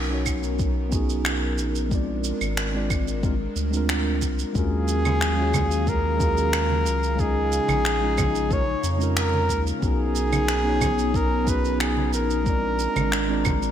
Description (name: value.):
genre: sunset chillout.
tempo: 91 BPM.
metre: 4/4.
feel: straight.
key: Bb minor.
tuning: A4 = 439 Hz.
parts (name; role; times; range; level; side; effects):
mellow tine electric piano; accompaniment; 0.0-13.7 s; Ab3 to Eb5; -28 LUFS; moving between left 6 dB and right 6 dB; auto-pan, ping-pong delay.
airy breathy pad; sustained chords; 0.0-13.7 s; Db3 to Bb5; -31 LUFS; equal; chorus.
round analog bass; bass; 0.0-13.7 s; Ab1 to F2; -26 LUFS; equal; none.
electronic claves, shaker and finger snaps; drums; 0.3-13.7 s; none; -29 LUFS; right 1 dB; gated reverb.
electronic kick drum; drums; 0.3-13.6 s; none; -27 LUFS; equal; none.
warm flugelhorn; melody; 4.6-13.7 s; Ab4 to Db5; -26 LUFS; equal; ping-pong delay.
congas; percussion; 5.1-13.6 s; none; -30 LUFS; right 3 dB; none.
room: light reverb, digital ambience.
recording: bright 1980s-style digital production.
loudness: -21 LUFS.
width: side -10 dB against mid.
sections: 0.0-13.7 A section.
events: none.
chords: 0.0 Bmaj9; 1.9 Bb7; 4.6 Ebm11; 7.2 Db69; 9.8 Bmaj9; 12.5 Bb7.